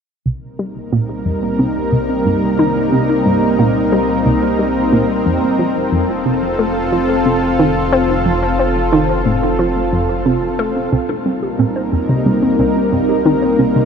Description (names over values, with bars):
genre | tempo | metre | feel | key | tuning
ambient, sequencer-driven space music | 90 BPM | 4/4 | straight | C dorian | A4 = 441 Hz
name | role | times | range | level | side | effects
lush unison pad | sustained chords | 0.8-13.9 s | G3 to Bb4 | -16 LUFS | equal | chorus, shimmer reverb
analog pluck | riff | 0.3-13.8 s | C2 to C4 | -18 LUFS | equal | chorus, tape echo
fat analog bass | bass | 0.3-13.9 s | F1 to C2 | -27 LUFS | equal | none
warbly dusty pluck | arpeggios | 10.9-13.9 s | C3 to C5 | -18 LUFS | moving between equal and right 8 dB | chorus, auto-pan, tape echo
room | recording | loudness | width
wet huge ambient reverb, RT60 7.8 s | dark, warm production | -13 LUFS | side -6 dB against mid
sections
0.3-10.9 A section; 10.9-13.9 B section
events
fade-in on analog synth bass 0.3-10.9; filter sweep on synth arpeggio sound 0.3-10.9, 10.9-13.9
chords
0.3 Cm7; 5.6 F; 10.9 Cm7